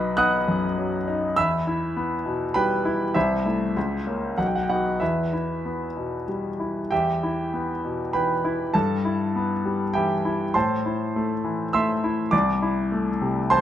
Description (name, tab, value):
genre	classical, virtuoso piano study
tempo	100 BPM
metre	3/4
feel	rubato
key	E minor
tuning	A4 = 440 Hz
part	clear grand piano	solo	0.0-13.6 s	B1 to F#6	-22 LUFS	equal	none
room	moderate recital hall reverb, RT60 1.5 s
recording	close, detailed microphones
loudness	-22 LUFS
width	side -11 dB against mid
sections	0.0-6.9 A section; 6.9-13.6 A section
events	none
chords	0.0 B; 1.4 Em; 3.1 Am/C; 3.8 C#mmaj7; 4.4 B; 5.0 Em; 8.7 Em/G; 10.5 Am; 12.3 Am/C